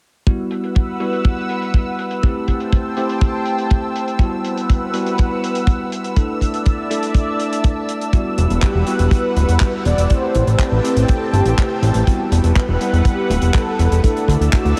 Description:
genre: italo disco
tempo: 122 BPM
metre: 4/4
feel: straight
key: E minor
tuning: A4 = 440 Hz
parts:
  - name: lush unison pad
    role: sustained chords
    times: 0.3-14.8 s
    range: C4 to E6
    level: -26 LUFS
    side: equal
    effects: chorus, phaser
  - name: bell-like tine electric piano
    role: stabs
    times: 0.3-14.8 s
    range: G3 to F#5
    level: -25 LUFS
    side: equal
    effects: low-pass filter, tape echo
  - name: damped 70s drum kit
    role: drums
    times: 0.3-14.8 s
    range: handclaps, hi-hat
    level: -31 LUFS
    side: equal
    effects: low-pass filter on hats, low-pass filter on snare, low-pass filter on room
  - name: kick drum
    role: drums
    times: 0.3-14.6 s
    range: none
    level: -17 LUFS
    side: equal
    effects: none
  - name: fat analog bass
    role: bass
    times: 8.4-14.7 s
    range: D1 to D2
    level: -17 LUFS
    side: equal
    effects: tube saturation
  - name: mellow synth brass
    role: melody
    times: 8.6-14.8 s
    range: F#4 to D5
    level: -25 LUFS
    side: equal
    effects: chorus, delay
room: moderate huge ambient reverb, RT60 9.2 s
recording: dreamy mix soaked in reverb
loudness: -18 LUFS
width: mono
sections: 0.3-14.8 A section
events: none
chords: 0.3 Emadd9; 2.2 Am7; 4.2 Emadd9; 6.2 Dsus2; 8.1 Emadd9; 10.1 Am7; 12.1 Emadd9; 14.0 Dsus2

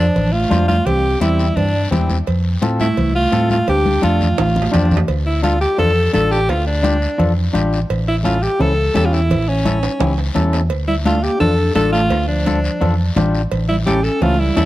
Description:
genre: latin, cumbia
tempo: 171 BPM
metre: 4/4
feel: straight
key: D minor, D harmonic minor from 5.1 s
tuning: A4 = 440 Hz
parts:
  - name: bright alto saxophone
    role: melody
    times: 0.0-14.6 s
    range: C4 to A4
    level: -19 LUFS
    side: equal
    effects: none
  - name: breathy clarinet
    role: second line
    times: 0.0-5.0, 10.9-14.7 s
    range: E3 to D4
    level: -23 LUFS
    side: right 2 dB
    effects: none
  - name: electric guitar at the edge of break-up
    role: accompaniment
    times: 0.0-14.7 s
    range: C4 to C5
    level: -23 LUFS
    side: left 3 dB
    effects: none
  - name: fingered electric bass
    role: bass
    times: 0.0-14.7 s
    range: A1 to A2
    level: -18 LUFS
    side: equal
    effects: none
  - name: congas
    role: percussion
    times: 0.2-14.7 s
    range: none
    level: -23 LUFS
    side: left 2 dB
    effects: none
  - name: cowbell and timbales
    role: percussion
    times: 0.2-14.7 s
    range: none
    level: -28 LUFS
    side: right 7 dB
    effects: none
  - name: guiro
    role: percussion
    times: 0.2-14.7 s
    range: none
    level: -33 LUFS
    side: left 5 dB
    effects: none
room: light reverb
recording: dark, warm production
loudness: -14 LUFS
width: side -16 dB against mid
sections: 0.0-5.1 A section; 5.1-14.7 B section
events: drum fill 3.7-5.1, 9.8-10.7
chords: 0.0 Dm; 0.9 C; 2.3 F; 3.7 Dm; 7.9 A7; 10.7 Dm; 13.5 A7

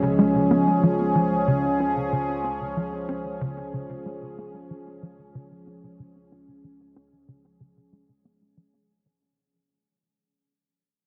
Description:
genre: ambient, sequencer-driven space music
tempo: 93 BPM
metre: 4/4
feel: straight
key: unclear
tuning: A4 = 444 Hz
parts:
  - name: sweeping resonant pad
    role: sustained chords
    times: 0.0-8.9 s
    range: E#3 to G#4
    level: -26 LUFS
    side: equal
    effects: chorus, phaser
  - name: analog drone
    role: bass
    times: 0.0-8.9 s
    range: C#2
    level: -46 LUFS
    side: equal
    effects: chorus
  - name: tight sequencer bass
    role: riff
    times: 0.2-8.8 s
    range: C#3 to C#4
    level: -27 LUFS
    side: equal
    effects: analog chorus, cassette tape, tape echo
room: wet huge ambient reverb, RT60 8.9 s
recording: none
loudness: -23 LUFS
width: mono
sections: 0.0-8.9 A section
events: fade-out on synth drone 0.0-8.9; fade-out 0.0-8.9; filter sweep on analog synth bass 0.0-8.9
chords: 0.0 C#

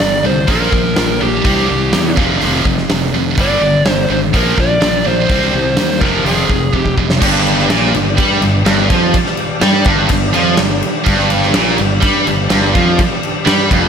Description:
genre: hard rock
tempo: 125 BPM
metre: 4/4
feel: straight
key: G minor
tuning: A4 = 440 Hz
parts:
  - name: dark smooth lead guitar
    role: melody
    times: 0.0-6.9 s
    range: G4 to D5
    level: -18 LUFS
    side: equal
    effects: overdrive, tape echo
  - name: heavy high-gain guitar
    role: riff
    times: 0.0-13.9 s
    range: F2 to C4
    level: -18 LUFS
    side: right 10 dB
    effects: distortion, slapback echo
  - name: tight distorted guitar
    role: riff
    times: 0.0-13.9 s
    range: F2 to C4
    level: -20 LUFS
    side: left 10 dB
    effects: distortion
  - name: fuzz fingered electric bass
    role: bass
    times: 0.0-13.9 s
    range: F1 to G2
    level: -18 LUFS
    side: equal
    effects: overdrive
  - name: huge arena drum kit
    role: drums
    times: 0.0-13.8 s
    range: crash cymbal, hi-hat, kick drum, snare drum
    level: -16 LUFS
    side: equal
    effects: none
  - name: overdriven tonewheel organ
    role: sustained chords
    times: 7.2-13.9 s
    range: G3 to G4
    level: -25 LUFS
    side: equal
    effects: slow rotary speaker, chorus vibrato
  - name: crunchy overdriven guitar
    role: riff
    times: 7.2-13.9 s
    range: F2 to G3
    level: -18 LUFS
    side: equal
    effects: none
room: moderate lush hall reverb, RT60 2.0 s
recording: big arena sound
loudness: -11 LUFS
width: side -7 dB against mid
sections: 0.0-7.2 A section; 7.2-13.9 B section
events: drum fill 6.7-7.2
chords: 0.5 Bb5; 1.4 C5; 2.2 F5; 3.4 G5; 4.3 Bb; 5.3 Cm; 6.0 Fm; 7.2 Gm

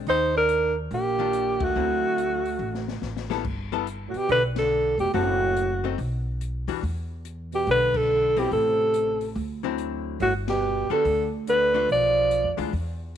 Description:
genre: jazz, small-group swing and bop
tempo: 142 BPM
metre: 4/4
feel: swing 64% on 8ths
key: G major from 3.4 s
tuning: A4 = 441 Hz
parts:
  - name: archtop guitar, miked and amplified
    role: accompaniment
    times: 0.0-12.7 s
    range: D3 to A4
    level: -31 LUFS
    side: left 14 dB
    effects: none
  - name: upright bass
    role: bass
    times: 0.0-13.2 s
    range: F1 to F2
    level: -30 LUFS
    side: equal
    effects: none
  - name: breathy alto saxophone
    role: melody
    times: 0.1-12.6 s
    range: Gb4 to D5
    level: -22 LUFS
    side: equal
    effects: none
  - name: breathy tenor saxophone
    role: second line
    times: 0.1-12.5 s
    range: A2 to Eb4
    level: -31 LUFS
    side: right 13 dB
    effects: none
  - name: open jazz drum kit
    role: drums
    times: 0.1-12.9 s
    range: crash cymbal, hi-hat, kick drum, ride cymbal, snare drum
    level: -38 LUFS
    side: left 5 dB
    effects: none
room: light reverb, studio ambience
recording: 1960s-style stereo with parts hard left and right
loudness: -22 LUFS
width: side -9 dB against mid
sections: 0.0-3.4 A section; 3.4-13.2 B section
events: band accent 1.5, 4.5, 7.9, 10.4; drum fill 2.6-3.4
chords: 0.1 Ebmaj9; 1.8 D9; 3.4 Gadd9; 5.1 F#m7b5; 6.0 B5; 6.8 E7(no3); 8.5 Am7; 9.4 D9; 10.2 Gadd9; 11.9 Bdim

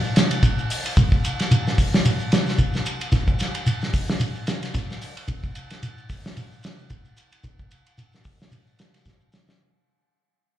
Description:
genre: afrobeat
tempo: 111 BPM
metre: 4/4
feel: swing 56% on 16ths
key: none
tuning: none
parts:
  - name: shekere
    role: percussion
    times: 0.0-9.6 s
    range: none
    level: -24 LUFS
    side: equal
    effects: slapback echo
  - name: warm soul drum kit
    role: drums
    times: 0.2-9.6 s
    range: hi-hat, kick drum, ride cymbal, snare drum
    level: -22 LUFS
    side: equal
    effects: none
room: light reverb, small room ambience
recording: live gig heard through the venue's PA, club reverb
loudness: -20 LUFS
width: side -12 dB against mid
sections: 0.0-9.6 A section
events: fade-out 0.0-9.6; drum fill 9.1-9.6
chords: none

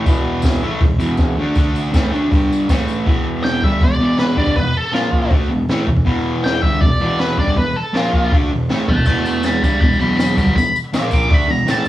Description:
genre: garage rock duo or trio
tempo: 160 BPM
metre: 4/4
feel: straight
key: E minor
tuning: A4 = 440 Hz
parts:
  - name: fuzz guitar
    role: riff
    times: 0.0-11.9 s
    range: E2 to D4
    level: -18 LUFS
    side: equal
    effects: distortion, cassette tape
  - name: jazz brush drum kit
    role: drums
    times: 0.1-11.8 s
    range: crash cymbal, hi-hat, kick drum, snare drum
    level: -17 LUFS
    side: equal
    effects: cassette tape
  - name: tambourine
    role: percussion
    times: 0.1-3.0, 9.1-11.9 s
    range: none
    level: -38 LUFS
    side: left 10 dB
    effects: none
  - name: octave-fuzz lead guitar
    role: melody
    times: 3.4-11.9 s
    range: E#4 to D6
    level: -19 LUFS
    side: equal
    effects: distortion, cassette tape
room: studio reverb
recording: home recording on cassette, small room ambience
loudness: -14 LUFS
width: side -14 dB against mid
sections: 0.0-3.1 A section; 3.1-11.9 B section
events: lead electric guitar solo 3.1-11.9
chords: 0.1 E5; 1.6 D5; 1.9 Asus4; 2.3 G5; 2.7 A5; 3.1 Em; 4.9 A#5; 5.3 Em; 7.9 A#5; 8.3 Em; 10.9 A#5; 11.3 E5

